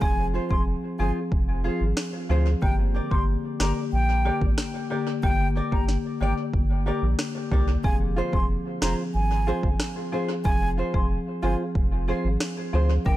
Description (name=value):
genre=dancehall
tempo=92 BPM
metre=4/4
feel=straight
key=F dorian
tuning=A4 = 440 Hz
part: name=mellow hollow silver concert flute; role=melody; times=0.0-13.2 s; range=G5 to C6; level=-32 LUFS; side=equal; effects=analog delay
part: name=marimba with medium mallets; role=accompaniment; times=0.0-13.2 s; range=D3 to Bb4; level=-29 LUFS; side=left 2 dB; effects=sidechain pumping, analog delay
part: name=round analog bass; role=bass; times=0.0-13.2 s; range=F1 to D2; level=-25 LUFS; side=equal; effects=none
part: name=afro-pop drum kit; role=drums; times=0.0-13.2 s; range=kick drum, rim click, snare drum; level=-26 LUFS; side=equal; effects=vintage 12-bit sampler grit, analog delay
part: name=flamenco guitar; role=arpeggios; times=0.3-12.9 s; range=F4 to D5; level=-33 LUFS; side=right 2 dB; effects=analog delay
room=little or no reverb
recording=echo-heavy mix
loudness=-22 LUFS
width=side -15 dB against mid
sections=0.0-13.2 A section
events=none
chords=0.0 Fm; 2.6 Gm; 7.8 Fm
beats=| 0.02 0.67 1.32 1.97 | 2.62 3.28 3.93 4.58 | 5.23 5.89 6.54 7.19 | 7.84 8.49 9.15 9.80 | 10.45 11.10 11.76 12.41 | 13.06